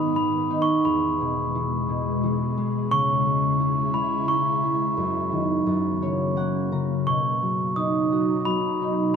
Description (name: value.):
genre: children's music, lullaby.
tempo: 87 BPM.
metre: 3/4.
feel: straight.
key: B major.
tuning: A4 = 440 Hz.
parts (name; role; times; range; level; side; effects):
glockenspiel with rubber mallets; melody; 0.0-9.1 s; B5 to D#6; -25 LUFS; equal; none.
concert harp; accompaniment; 0.0-9.2 s; E2 to A#5; -24 LUFS; equal; none.
ethereal airy pad; sustained chords; 0.0-9.2 s; E2 to E4; -28 LUFS; equal; ensemble chorus, built-in reverb.
room: light reverb.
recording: none.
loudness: -21 LUFS.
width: side -6 dB against mid.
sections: 0.0-7.1 A section; 7.1-9.2 B section.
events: harp fill 5.7-7.1.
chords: 0.0 G#m; 0.9 E; 2.9 C#m; 5.0 B/F#; 5.7 F#; 7.1 B.